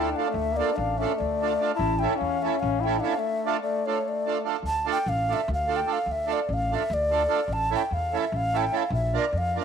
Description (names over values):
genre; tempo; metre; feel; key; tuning
balkan folk, Balkan wedding band; 295 BPM (eighths); 7/8; straight; D harmonic minor; A4 = 443 Hz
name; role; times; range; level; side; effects
breathy mellow alto ocarina; melody; 0.0-9.6 s; C#5 to A5; -27 LUFS; equal; none
dark trumpet; second line; 0.0-4.5, 9.6 s; A3 to E4; -29 LUFS; left 10 dB; slapback echo
accordion; accompaniment; 0.0-9.6 s; A3 to Bb4; -29 LUFS; right 12 dB; none
upright bass; bass; 0.0-9.6 s; A1 to F2; -30 LUFS; left 1 dB; none
room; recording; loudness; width
moderate echo chamber reverb, RT60 2.1 s; 1960s-style stereo with parts hard left and right; -23 LUFS; side -7 dB against mid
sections
0.0-4.6 A section; 4.6-9.6 A section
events
break 3.2-4.6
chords
0.0 Dm; 1.8 A; 3.2 Dm; 7.5 A; 8.9 Bb